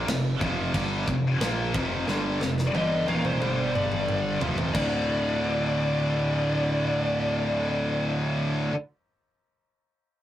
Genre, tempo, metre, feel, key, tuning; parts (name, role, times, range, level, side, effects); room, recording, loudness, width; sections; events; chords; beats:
heavy metal; 90 BPM; 4/4; straight; D phrygian; A4 = 440 Hz
heavy high-gain guitar; riff; 0.0-8.7 s; D2 to Bb3; -31 LUFS; left 4 dB; distortion
scooped high-gain guitar; riff; 0.0-8.7 s; D2 to Bb3; -29 LUFS; right 2 dB; distortion
tight distorted guitar; riff; 0.0-8.7 s; D2 to Bb3; -36 LUFS; equal
fuzz picked electric bass; bass; 0.0-8.7 s; D1 to Bb1; -32 LUFS; equal; overdrive
tight metal drum kit; drums; 0.1-4.9 s; crash cymbal, kick drum, snare drum, toms; -30 LUFS; equal
high-gain lead guitar; melody; 2.7-8.2 s; C5 to F5; -28 LUFS; left 2 dB; distortion
moderate booth ambience, RT60 0.2 s; rough rehearsal-room recording, warm saturation; -24 LUFS; side -12 dB against mid
0.0-4.7 A section; 4.7-7.4 B section
drum fill 2.1-4.7
0.0 F5; 3.4 G5; 4.4 F5; 4.7 D5
0.07 0.74 1.41 | 2.07 2.74 3.40 4.07 | 4.74 5.41 6.07 6.74